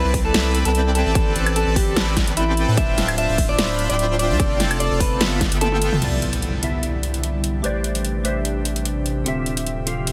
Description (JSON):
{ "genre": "future bass", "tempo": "148 BPM", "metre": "4/4", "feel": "swing 53% on 16ths, half-time", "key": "C major", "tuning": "A4 = 440 Hz", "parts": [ { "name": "clean electric guitar", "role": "melody", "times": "0.0-5.9 s", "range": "E4 to E5", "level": "-27 LUFS", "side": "equal", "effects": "sidechain pumping, tape echo" }, { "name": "soft supersaw", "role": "riff", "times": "0.0-6.0 s", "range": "B3 to B5", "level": "-27 LUFS", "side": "equal", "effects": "sidechain pumping, low-pass filter, delay" }, { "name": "saturated sub bass", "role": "bass", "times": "0.0-10.1 s", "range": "D1 to A2", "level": "-25 LUFS", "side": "equal", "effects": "sidechain pumping" }, { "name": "big-room dance drum kit", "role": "drums", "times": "0.1-10.1 s", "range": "crash cymbal, hi-hat, snare drum, toms, woodblock", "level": "-26 LUFS", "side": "equal", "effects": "none" }, { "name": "electronic kick drum", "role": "drums", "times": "0.1-5.5 s", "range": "none", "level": "-24 LUFS", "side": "equal", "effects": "none" }, { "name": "glassy digital keys", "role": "accompaniment", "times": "6.0-10.1 s", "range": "C3 to F5", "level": "-29 LUFS", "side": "equal", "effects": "chorus, sidechain pumping, delay" }, { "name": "airy breathy pad", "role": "sustained chords", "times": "6.4-10.1 s", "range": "C3 to E5", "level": "-32 LUFS", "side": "equal", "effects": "chorus, sidechain pumping" }, { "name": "impact", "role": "sound effects", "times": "6.0-7.6 s", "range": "none", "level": "-33 LUFS", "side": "equal", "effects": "none" } ], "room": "light reverb, digital ambience", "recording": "heavily compressed radio sound, multiband compression", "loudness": "-20 LUFS", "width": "mono", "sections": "0.0-6.0 A section; 6.0-10.1 B section", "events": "drop 0.0-6.0; drum fill 5.6-6.0; impact 6.0-7.6", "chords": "0.0 Cmaj9; 1.2 Am11; 2.8 Dm11; 4.4 F69; 5.2 G13; 6.0 Cmaj9; 7.6 Am11; 9.3 Dm11" }